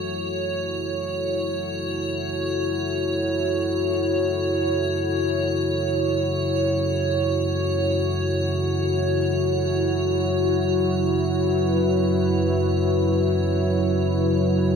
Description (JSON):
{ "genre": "dark ambient drone", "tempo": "free time", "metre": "none", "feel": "none", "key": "F# minor", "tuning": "A4 = 440 Hz", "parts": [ { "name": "dark analog pad", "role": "sustained chords", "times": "0.0-14.8 s", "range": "F#3 to B4", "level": "-23 LUFS", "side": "left 2 dB", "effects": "chorus" }, { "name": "deep rumbling drone", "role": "drone", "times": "0.0-14.8 s", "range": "F#2 to C#3", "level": "-27 LUFS", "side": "right 2 dB", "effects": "built-in reverb" }, { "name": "icy glass pad", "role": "texture", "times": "0.0-14.8 s", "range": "C#5", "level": "-27 LUFS", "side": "right 3 dB", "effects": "chorus, built-in reverb" } ], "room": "wet cathedral reverb, RT60 5.7 s", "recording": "none", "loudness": "-20 LUFS", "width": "side -6 dB against mid", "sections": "0.0-14.8 A section", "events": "fade-in on synth drone 0.0-14.8", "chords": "0.0 F#m; 10.0 C#m7/F#" }